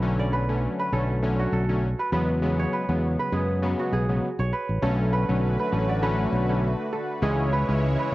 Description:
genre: afrobeats.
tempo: 100 BPM.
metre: 4/4.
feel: swing 55% on 16ths.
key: B dorian.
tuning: A4 = 438 Hz.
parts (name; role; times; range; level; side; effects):
warm analog keys; accompaniment; 0.0-8.1 s; C#3 to C#4; -27 LUFS; left 2 dB; chorus, cassette tape, plate reverb.
kora; riff; 0.0-8.1 s; F#4 to D5; -30 LUFS; right 3 dB; cassette tape, tape echo.
fingered electric bass; bass; 0.0-8.1 s; A1 to F#2; -25 LUFS; equal; none.
lush unison pad; sustained chords; 4.8-8.1 s; C#3 to C#5; -30 LUFS; equal; chorus, cassette tape, plate reverb.
room: light reverb.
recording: home recording on cassette.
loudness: -22 LUFS.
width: side -17 dB against mid.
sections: 0.0-4.8 A section; 4.8-8.1 B section.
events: none.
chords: 0.0 Bm7; 2.1 E6; 4.8 Bm7; 7.2 C#m.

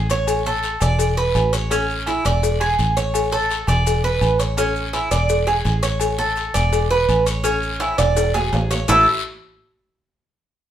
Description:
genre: latin, Cuban son and guajira.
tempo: 167 BPM.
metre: 4/4.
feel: straight.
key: A major.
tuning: A4 = 440 Hz.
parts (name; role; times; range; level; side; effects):
Cuban tres; arpeggios; 0.0-9.1 s; A3 to D5; -20 LUFS; right 3 dB; none.
fingered electric bass; bass; 0.0-9.1 s; E1 to A1; -21 LUFS; equal; none.
cowbell and bongos; percussion; 0.1-9.0 s; none; -27 LUFS; left 8 dB; none.
guiro; percussion; 0.1-9.0 s; none; -32 LUFS; left 6 dB; none.
maracas; percussion; 0.1-9.0 s; none; -32 LUFS; left 7 dB; none.
agogo bells and timbales; percussion; 0.3-9.0 s; none; -27 LUFS; right 2 dB; none.
room: moderate studio reverb, RT60 0.7 s.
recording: band playing live in one room.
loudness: -16 LUFS.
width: side -10 dB against mid.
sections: 0.0-8.9 A section; 8.9-10.3 B section.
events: drum fill 7.8-8.9.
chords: 0.3 A; 1.0 E5; 1.7 A; 2.4 E7; 3.1 A; 3.9 E5; 4.6 A; 5.3 E7; 6.0 A; 6.7 E5; 7.5 A; 8.2 E7; 8.9 A5.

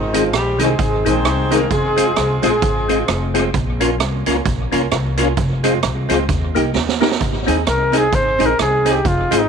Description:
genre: ska.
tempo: 131 BPM.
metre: 4/4.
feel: swing 58% on 8ths.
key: Ab major.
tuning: A4 = 444 Hz.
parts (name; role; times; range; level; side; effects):
warm horn section; melody; 0.0-3.3 s; Eb3 to C5; -19 LUFS; left 1 dB; none.
upright bass; bass; 0.0-9.5 s; F1 to Eb2; -22 LUFS; left 1 dB; none.
archtop guitar, miked and amplified; accompaniment; 0.1-9.5 s; Eb3 to Ab4; -22 LUFS; right 10 dB; tape echo.
percussive tonewheel organ; stabs; 0.1-9.4 s; Bb3 to Bb4; -22 LUFS; left 12 dB; chorus vibrato, fast rotary speaker.
street-band drum kit; drums; 0.1-9.4 s; hi-hat, kick drum, rim click, snare drum; -21 LUFS; right 5 dB; tape echo.
dark trumpet; melody; 7.7-9.5 s; Eb4 to C5; -16 LUFS; left 1 dB; none.
room: moderate echo chamber reverb, RT60 2.0 s.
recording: 1960s-style stereo with parts hard left and right.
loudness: -14 LUFS.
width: side -6 dB against mid.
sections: 0.0-7.2 A section; 7.2-9.5 B section.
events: drum fill 6.8-7.2; trumpet solo 7.2-9.5.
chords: 0.0 Ab; 1.7 Fm; 3.5 Bbm; 5.4 Fm; 6.3 Eb; 7.2 Ab.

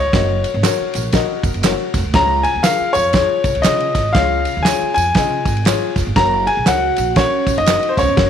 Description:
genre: uptempo 1960s-style soul.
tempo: 119 BPM.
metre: 4/4.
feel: swing 61% on 8ths.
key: F# major.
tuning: A4 = 438 Hz.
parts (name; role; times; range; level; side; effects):
clear baby grand piano; melody; 0.0-8.3 s; B#4 to A#5; -17 LUFS; left 2 dB; none.
upright bass; bass; 0.0-8.3 s; E#1 to C#3; -22 LUFS; right 2 dB; none.
warm upright piano; accompaniment; 0.1-8.3 s; C#3 to D#5; -22 LUFS; left 12 dB; none.
warm soul drum kit; drums; 0.1-8.3 s; kick drum, ride cymbal, snare drum; -19 LUFS; right 2 dB; none.
tambourine and handclaps; percussion; 0.1-8.1 s; none; -27 LUFS; right 15 dB; none.
vibraphone with medium hard mallets; second line; 6.2-8.3 s; B#3 to A#4; -23 LUFS; right 15 dB; none.
room: moderate echo chamber reverb, RT60 1.7 s, small room ambience.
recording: 1960s-style stereo with parts hard left and right.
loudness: -14 LUFS.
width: side -8 dB against mid.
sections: 0.0-8.3 A section.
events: none.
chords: 0.0 F#; 2.1 C#; 6.2 F#.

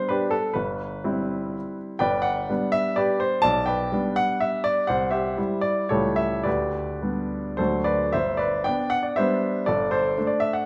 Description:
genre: classical, romantic triple-time dance for piano with dotted rhythms.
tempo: 102-137 BPM.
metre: 3/4.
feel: rubato.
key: G major.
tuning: A4 = 439 Hz.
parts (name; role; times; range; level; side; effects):
clear baby grand piano; solo; 0.0-10.7 s; G1 to A5; -24 LUFS; equal; none.
room: moderate recital hall reverb, RT60 1.4 s.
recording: none.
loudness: -24 LUFS.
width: mono.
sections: 0.0-8.1 A section; 8.1-10.7 B section.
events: none.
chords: 0.0 G; 0.6 C/G; 2.0 G; 3.4 G/B; 4.9 C; 5.9 A7/C#; 6.5 G/D; 7.6 D; 8.1 G; 9.7 D7/G.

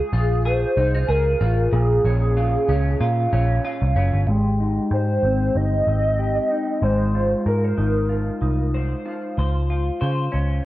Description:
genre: indie pop, bedroom pop.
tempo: 94 BPM.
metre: 4/4.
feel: swing 55% on 16ths.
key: Ab major.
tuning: A4 = 440 Hz.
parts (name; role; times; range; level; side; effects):
warbly nostalgic lead; melody; 0.0-9.0 s; Ab4 to Eb5; -23 LUFS; right 1 dB; analog chorus.
electric guitar through a small old amp; accompaniment; 0.0-10.7 s; Bb2 to C5; -24 LUFS; left 1 dB; analog chorus, vibrato effect, low-pass filter.
vintage muted picked electric bass; bass; 0.1-10.6 s; Gb1 to Db3; -20 LUFS; equal; none.
room: light reverb, digital ambience.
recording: worn, warbling old tape, cassette tape, warbly pitch drift.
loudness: -18 LUFS.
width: side -16 dB against mid.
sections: 0.0-4.3 A section; 4.3-10.7 B section.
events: filter sweep on clean electric guitar 4.3-10.7.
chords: 0.0 Dbmaj7; 1.7 Bbm7; 4.3 Abmaj7; 6.8 Fm7/Ab; 9.4 Dbmaj7.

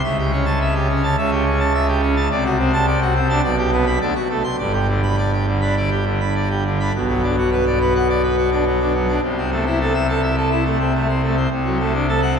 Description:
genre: classical, organ toccata.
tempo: 105 BPM.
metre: 4/4.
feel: straight.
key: G major.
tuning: A4 = 440 Hz.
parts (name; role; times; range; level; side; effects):
pipe organ, full organ; solo; 0.0-12.4 s; G1 to C6; -16 LUFS; equal; none.
room: wet cathedral reverb, RT60 5.8 s.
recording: heard from further back in the room.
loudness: -16 LUFS.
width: side -6 dB against mid.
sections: 0.0-6.9 A section; 6.9-12.4 B section.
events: none.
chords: 0.1 A7/C#; 2.3 D7/C; 3.4 G/B; 4.0 D7; 4.6 G; 6.9 Bm; 9.2 Am/C; 11.5 D7/C.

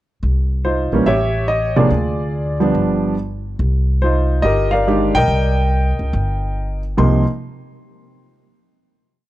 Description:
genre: jazz piano trio.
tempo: 142 BPM.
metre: 4/4.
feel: swing 67% on 8ths.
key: C minor.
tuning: A4 = 440 Hz.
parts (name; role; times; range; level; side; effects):
upright bass; bass; 0.2-7.2 s; G1 to D2; -18 LUFS; equal; none.
warm concert grand piano; melody; 0.6-7.2 s; C3 to C6; -17 LUFS; equal; none.
room: small room ambience.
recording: dry, close 1970s-style studio recording.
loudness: -15 LUFS.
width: side -15 dB against mid.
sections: 0.2-7.0 A section; 7.0-8.7 final chord.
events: none.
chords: 0.2 Cm7; 1.1 A7; 1.9 Ddim; 2.7 G7; 3.6 Cm11; 7.0 N.C..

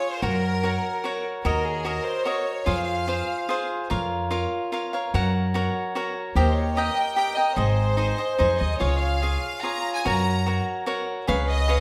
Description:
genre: mexican folk, mariachi.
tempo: 147 BPM.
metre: 3/4.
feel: rubato.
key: unclear.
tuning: A4 = 440 Hz.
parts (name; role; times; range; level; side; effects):
clear studio violin section; melody; 0.0-3.7, 6.4-11.8 s; Ab4 to Bb5; -29 LUFS; equal; none.
cavaquinho; accompaniment; 0.0-11.8 s; Eb4 to G5; -28 LUFS; equal; none.
upright bass; bass; 0.2-11.8 s; Ab1 to Gb2; -27 LUFS; equal; none.
room: wet recital hall reverb, RT60 1.6 s.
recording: none.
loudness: -25 LUFS.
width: mono.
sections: 0.0-11.8 A section.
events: none.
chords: 0.2 Gb; 1.4 Ebm7; 2.7 Fm; 3.9 Bbm/F; 5.1 Gb; 6.4 Eb; 7.6 Ab; 8.8 Db; 10.1 Gb; 11.3 Db7.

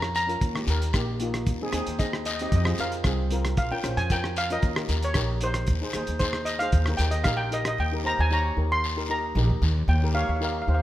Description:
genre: calypso.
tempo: 114 BPM.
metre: 4/4.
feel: straight.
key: unclear.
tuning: A4 = 440 Hz.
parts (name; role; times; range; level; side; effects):
steel pan; melody; 0.0-10.8 s; Bb4 to C6; -28 LUFS; equal; none.
steel pan; accompaniment; 0.0-10.8 s; Bb3 to Db5; -32 LUFS; left 1 dB; none.
upright bass; bass; 0.0-10.8 s; Bb1 to F2; -26 LUFS; equal; none.
cloth-damped thuddy drum kit; drums; 0.0-7.8 s; hi-hat, kick drum, rim click; -29 LUFS; equal; none.
guiro; percussion; 0.1-10.5 s; none; -37 LUFS; left 5 dB; none.
room: light reverb.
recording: minimal, uncompressed stereo recording.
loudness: -23 LUFS.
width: side -14 dB against mid.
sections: 0.0-7.8 A section; 7.8-10.8 B section.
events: steel pan solo 0.0-7.8.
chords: 0.4 Eb; 1.5 Ab/Eb; 2.5 Fm; 3.6 Bbm; 4.6 Eb; 5.7 Ab/Eb; 6.7 Eb.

